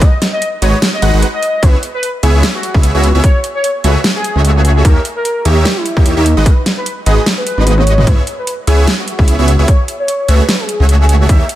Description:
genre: future bass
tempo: 149 BPM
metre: 4/4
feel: swing 56% on 16ths, half-time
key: C# minor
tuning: A4 = 444 Hz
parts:
  - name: warm velvety synth lead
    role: melody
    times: 0.0-11.5 s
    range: D#4 to E5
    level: -18 LUFS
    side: equal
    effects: chorus, sidechain pumping, digital delay
  - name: supersaw chords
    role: riff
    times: 0.0-11.4 s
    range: G#3 to F#5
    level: -18 LUFS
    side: right 1 dB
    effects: sidechain pumping
  - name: wide detuned saw bass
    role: bass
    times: 0.0-11.4 s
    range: G#1 to D#2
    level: -11 LUFS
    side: equal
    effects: chorus, sidechain pumping
  - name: dubstep drum kit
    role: drums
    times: 0.0-11.6 s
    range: hi-hat, snare drum, toms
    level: -17 LUFS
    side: equal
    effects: studio reverb
  - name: electronic kick drum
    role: drums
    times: 0.0-11.4 s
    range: none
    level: -9 LUFS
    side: equal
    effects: studio reverb
room: little or no reverb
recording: none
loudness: -10 LUFS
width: side -14 dB against mid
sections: 0.0-11.6 A section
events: kick drops out 7.3-8.1; drum fill 7.7-8.1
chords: 0.0 G#m7; 1.6 C#m7; 3.2 F#m9/C#; 4.8 D#7b9; 6.3 G#m7; 8.1 C#m7; 9.7 F#m9/C#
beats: | 0.02 0.42 0.82 1.22 | 1.63 2.03 2.43 2.83 | 3.24 3.64 4.04 4.45 | 4.85 5.25 5.65 6.06 | 6.46 6.86 7.26 7.67 | 8.07 8.47 8.88 9.28 | 9.68 10.08 10.49 10.89 | 11.29

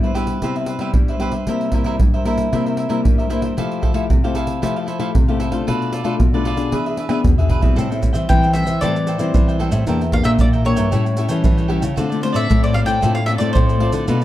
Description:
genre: samba and choro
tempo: 114 BPM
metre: 4/4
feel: straight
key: A minor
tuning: A4 = 439 Hz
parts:
  - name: cavaquinho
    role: accompaniment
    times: 0.0-14.2 s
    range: D4 to G5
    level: -26 LUFS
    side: right 3 dB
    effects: none
  - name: nylon-string guitar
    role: accompaniment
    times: 0.0-14.2 s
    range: G2 to G#4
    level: -22 LUFS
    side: left 4 dB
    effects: none
  - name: pandeiro, surdo, tamborim and maracas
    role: percussion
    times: 0.0-14.2 s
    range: none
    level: -18 LUFS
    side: right 1 dB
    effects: none
  - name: nylon-string guitar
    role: bass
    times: 7.8-14.2 s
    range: E2 to E3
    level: -19 LUFS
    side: equal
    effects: none
  - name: mandolin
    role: melody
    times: 8.3-13.9 s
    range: C5 to G5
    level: -22 LUFS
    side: left 1 dB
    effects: none
room: light reverb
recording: dark, warm production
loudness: -15 LUFS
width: side -14 dB against mid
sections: 0.0-7.8 A section; 7.8-14.2 B section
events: drum fill 7.1-7.8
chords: 0.0 Cmaj7; 1.5 C7; 3.6 Fmaj9; 5.7 Bm7b5; 6.7 E7; 7.8 Am7; 9.9 Em7b5; 10.9 A7; 12.0 Dm7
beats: 0.42 0.94 | 1.47 1.99 2.52 3.04 | 3.57 4.10 4.62 5.15 | 5.67 6.20 6.72 7.25 | 7.77 8.30 8.82 9.35 | 9.88 10.40 10.93 11.45 | 11.98 12.50 13.03 13.55 | 14.08

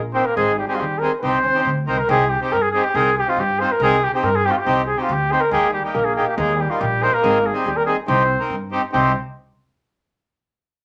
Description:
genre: klezmer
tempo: 140 BPM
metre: 2/4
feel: straight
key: C minor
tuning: A4 = 439 Hz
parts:
  - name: upright bass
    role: bass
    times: 0.0-9.1 s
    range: Ab1 to G2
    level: -28 LUFS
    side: equal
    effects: none
  - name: warm cornet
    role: melody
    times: 0.1-9.1 s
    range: F4 to C5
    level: -21 LUFS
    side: equal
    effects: none
  - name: brilliant trombone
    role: second line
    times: 0.1-1.8, 5.5-9.1 s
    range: G3 to C4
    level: -28 LUFS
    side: equal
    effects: none
  - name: accordion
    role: accompaniment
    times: 0.1-9.1 s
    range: Bb3 to Bb4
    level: -25 LUFS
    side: equal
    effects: none
room: wet small room reverb, RT60 0.6 s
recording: none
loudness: -19 LUFS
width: mono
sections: 0.0-2.1 A section; 2.1-8.9 A section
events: none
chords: 0.4 Ab; 1.2 Cm; 5.5 Eb; 7.2 Ab; 8.1 Cm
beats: | 0.36 0.79 | 1.22 1.65 | 2.08 2.51 | 2.94 3.37 | 3.80 4.22 | 4.65 5.08 | 5.51 5.94 | 6.36 6.79 | 7.22 7.64 | 8.07 8.50 | 8.92

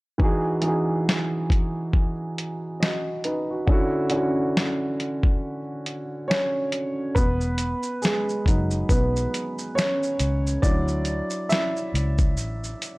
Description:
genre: lo-fi hip hop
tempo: 69 BPM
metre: 4/4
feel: swing 59% on 16ths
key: E major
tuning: A4 = 440 Hz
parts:
  - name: dark upright piano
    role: accompaniment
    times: 0.2-13.0 s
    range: D3 to E5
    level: -25 LUFS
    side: right 1 dB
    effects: low-pass filter
  - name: lo-fi sampler-style drum kit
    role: drums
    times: 0.2-13.0 s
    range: hi-hat, kick drum, shaker, snare drum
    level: -23 LUFS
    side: equal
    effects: none
  - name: vintage muted fingered electric bass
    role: bass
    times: 7.2-12.7 s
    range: E1 to D2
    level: -25 LUFS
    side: equal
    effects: none
room: little or no reverb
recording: dry, gritty hardware recording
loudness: -22 LUFS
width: side -23 dB against mid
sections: 0.2-7.2 A section; 7.2-13.0 B section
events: upright piano solo 7.2-13.0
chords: 0.2 Emaj9; 3.7 Dmaj9; 7.2 Emaj9; 10.6 Dmaj9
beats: | 0.20 1.07 1.94 2.81 | 3.68 4.55 5.42 6.29 | 7.15 8.02 8.89 9.76 | 10.63 11.50 12.37

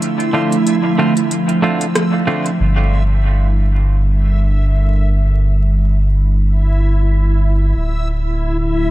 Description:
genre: ambient dub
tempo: 93 BPM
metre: 4/4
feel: swing 56% on 16ths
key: G dorian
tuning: A4 = 440 Hz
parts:
  - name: warbly tape-like pad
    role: sustained chords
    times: 0.0-8.9 s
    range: D3 to Bb4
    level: -20 LUFS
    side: right 2 dB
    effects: chorus, built-in reverb
  - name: organic electronic drum kit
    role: drums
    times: 0.0-2.6 s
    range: hi-hat, rim click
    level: -23 LUFS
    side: equal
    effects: overdrive, low-pass filter on hats, low-pass filter on snare, low-pass filter on room, dub echo
  - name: backwards swelling texture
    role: texture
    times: 0.0-8.9 s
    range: E4 to E5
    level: -26 LUFS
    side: equal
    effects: built-in reverb
  - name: semi-hollow electric guitar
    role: stabs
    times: 0.3-2.5 s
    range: D3 to F4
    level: -20 LUFS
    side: right 2 dB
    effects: dub echo
  - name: soft dub sub bass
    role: bass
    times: 2.6-8.9 s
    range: D1 to G1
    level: -13 LUFS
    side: equal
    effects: none
room: light reverb, digital ambience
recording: vinyl crackle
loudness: -13 LUFS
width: side -15 dB against mid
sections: 0.0-2.6 A section; 2.6-8.9 B section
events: break 0.0-2.6; filter sweep on ambient pad 2.6-8.9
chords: 0.0 Dm7; 2.6 Gm7; 7.8 D5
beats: | 0.02 0.66 1.31 1.95 | 2.60 3.24 3.89 4.53 | 5.18 5.83 6.47 7.12 | 7.76 8.40

